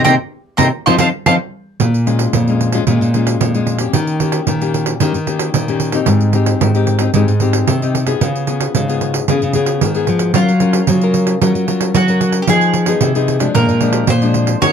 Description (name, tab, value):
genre	samba and choro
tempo	112 BPM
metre	4/4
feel	straight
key	Bb minor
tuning	A4 = 440 Hz
part	bowl-back mandolin	second line	0.0-1.3, 10.3-14.7 s	F4 to C6	-17 LUFS	right 2 dB	none
part	nylon-string guitar	bass	0.0-14.7 s	Ab2 to Gb3	-16 LUFS	equal	none
part	nylon-string guitar	accompaniment	0.1-14.7 s	F2 to Bb4	-18 LUFS	left 8 dB	none
part	pandeiro	percussion	0.1-14.7 s	none	-18 LUFS	right 8 dB	none
room	light reverb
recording	close, detailed microphones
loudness	-12 LUFS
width	side -7 dB against mid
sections	0.0-1.8 A section; 1.8-14.7 B section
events	band accent 0.0-1.8; mandolin solo 0.0-1.8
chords	0.0 Cm7; 0.7 F7; 1.8 Bbm7; 3.9 Eb7; 6.1 Abmaj7; 8.2 Db7; 10.3 Gbmaj7; 12.5 Fm7b5; 13.6 Bb7